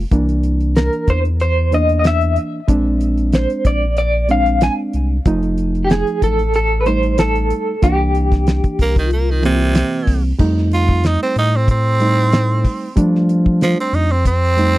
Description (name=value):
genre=straight-eighth soul blues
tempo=93 BPM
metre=4/4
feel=straight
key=unclear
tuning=A4 = 440 Hz
part: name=reed electric piano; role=accompaniment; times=0.0-14.8 s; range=E3 to Eb4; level=-20 LUFS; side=right 2 dB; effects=spring reverb
part: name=saturated sub bass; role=bass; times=0.0-14.8 s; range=F1 to F3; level=-17 LUFS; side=equal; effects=none
part: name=damped 70s drum kit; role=drums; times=0.1-14.8 s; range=crash cymbal, hi-hat, kick drum, snare drum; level=-16 LUFS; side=equal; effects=none
part: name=electric guitar through a small old amp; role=melody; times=0.8-9.7 s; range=G4 to Ab5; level=-19 LUFS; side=equal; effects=tremolo
part: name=raspy tenor saxophone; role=second line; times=8.8-14.8 s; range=C3 to F4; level=-18 LUFS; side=right 3 dB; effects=none
room=little or no reverb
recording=dry, close 1970s-style studio recording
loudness=-14 LUFS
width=side -16 dB against mid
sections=0.0-10.4 A section; 10.4-14.8 B section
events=tenor saxophone solo 10.4-14.8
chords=0.1 C9; 2.7 Bb9; 5.3 F9; 7.8 C9; 10.4 F9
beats=| 0.12 0.76 1.40 2.04 | 2.69 3.33 3.97 4.61 | 5.26 5.90 6.54 7.18 | 7.83 8.47 9.11 9.75 | 10.40 11.04 11.68 12.32 | 12.97 13.61 14.25